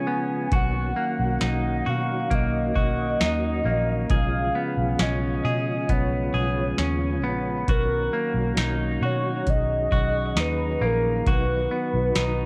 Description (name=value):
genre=dream pop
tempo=67 BPM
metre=4/4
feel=straight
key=B lydian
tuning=A4 = 440 Hz
part: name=warm velvety synth lead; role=melody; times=0.0-12.5 s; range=A#4 to G#5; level=-31 LUFS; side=equal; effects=chorus, cassette tape, tape echo
part: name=mellow tonewheel organ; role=sustained chords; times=0.0-12.5 s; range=C#3 to G#4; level=-33 LUFS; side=equal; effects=chorus vibrato, fast rotary speaker, cassette tape
part: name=clean electric guitar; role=arpeggios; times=0.0-12.5 s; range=B2 to G#4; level=-31 LUFS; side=equal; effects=subtle chorus, cassette tape, tape echo
part: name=vintage muted fingered electric bass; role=bass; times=0.5-12.5 s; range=A#1 to B2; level=-29 LUFS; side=equal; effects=none
part: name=booming analog drum machine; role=drums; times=0.5-12.4 s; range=hi-hat, kick drum, snare drum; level=-27 LUFS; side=equal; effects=cassette tape
room=moderate spring reverb, RT60 2.4 s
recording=home recording on cassette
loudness=-24 LUFS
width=mono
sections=0.0-12.5 A section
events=none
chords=0.0 C#7/B; 0.5 Bmaj7; 4.1 C#7/B; 7.7 Bmaj7; 11.3 B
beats=| 0.52 1.41 2.31 3.21 | 4.10 5.00 5.89 6.79 | 7.68 8.58 9.47 10.37 | 11.27 12.16